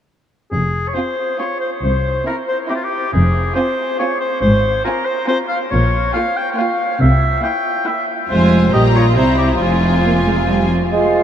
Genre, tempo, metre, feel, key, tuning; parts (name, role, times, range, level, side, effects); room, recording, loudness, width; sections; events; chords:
cinematic, playful, whimsical film cue; 139 BPM; 3/4; straight; F minor; A4 = 440 Hz
warm oboe; second line; 0.5-11.2 s; F4 to G5; -18 LUFS; left 1 dB
dark studio cello section; bass; 0.5-10.7 s; C2 to C3; -18 LUFS; equal
rich studio double bass section; bass; 0.5-10.7 s; F1 to C2; -18 LUFS; equal
rich studio violin section; melody; 1.0-10.7 s; G5 to C6; -28 LUFS; left 2 dB
warm studio violin section; second line; 1.0-10.7 s; E4 to G4; -24 LUFS; right 2 dB
rich studio viola section; accompaniment; 1.0-10.8 s; F3 to C4; -24 LUFS; right 3 dB
bright clarinet; second line; 10.9-11.2 s; F4; -19 LUFS; left 4 dB
silver concert flute; second line; 10.9-11.2 s; F5; -23 LUFS; right 1 dB
warm bassoon; accompaniment; 10.9-11.2 s; Ab3; -14 LUFS; right 5 dB
wet huge ambient reverb, RT60 8.1 s; in a vast, echoing space; -14 LUFS; side -9 dB against mid
0.5-10.9 A section
0.5 F5; 1.8 C7; 3.1 Fm; 4.4 Fm/Ab; 5.7 Gm7b5/Bb; 7.0 C7; 8.3 Fm; 8.7 Gdim/Bb; 9.2 C7; 9.6 Fm